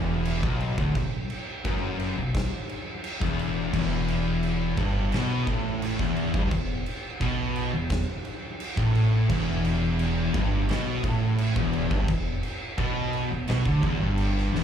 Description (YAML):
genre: stoner and doom metal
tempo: 86 BPM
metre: 4/4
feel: straight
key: unclear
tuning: A4 = 440 Hz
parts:
  - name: high-gain distorted guitar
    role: riff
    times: 0.0-14.6 s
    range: B1 to D3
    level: -32 LUFS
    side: equal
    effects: distortion
  - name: thick fuzz guitar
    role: riff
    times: 0.0-14.6 s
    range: B1 to D3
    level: -29 LUFS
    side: left 6 dB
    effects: distortion
  - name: upright bass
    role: bass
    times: 0.0-14.6 s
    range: D1 to D2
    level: -30 LUFS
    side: equal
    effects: overdrive
  - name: oversized low-tuned drum kit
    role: drums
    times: 0.3-14.6 s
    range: crash cymbal, kick drum, snare drum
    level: -31 LUFS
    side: equal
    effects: none
  - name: thick fuzz guitar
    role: riff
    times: 3.7-14.6 s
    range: E2 to D3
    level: -29 LUFS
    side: right 7 dB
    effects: distortion
room: little or no reverb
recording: live gig heard through the venue's PA, club reverb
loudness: -24 LUFS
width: side -8 dB against mid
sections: 0.0-14.6 A section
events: none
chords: 0.0 Bm; 3.7 E5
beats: 0.26 | 0.96 1.65 2.35 3.04 | 3.74 4.43 5.13 5.82 | 6.52 7.21 7.91 8.61 | 9.30 10.00 10.69 11.39 | 12.09 12.79 13.48 14.18